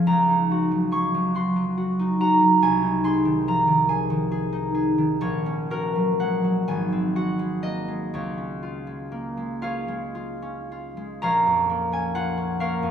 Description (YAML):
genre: classical, solo harp piece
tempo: 36-48 BPM (dotted quarters)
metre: 6/8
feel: rubato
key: Db major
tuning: A4 = 440 Hz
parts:
  - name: concert harp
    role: solo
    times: 0.0-12.9 s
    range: Ab1 to Db6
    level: -21 LUFS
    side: equal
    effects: none
room: wet recital hall reverb, RT60 1.5 s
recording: recorded in a church or concert hall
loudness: -21 LUFS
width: side -8 dB against mid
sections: 0.0-11.2 A section; 11.2-12.9 B section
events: none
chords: 0.1 Ebm7/Db; 2.6 Ab/C; 5.2 Gb/Bb; 6.7 Ab7; 8.1 Db; 11.2 Bbm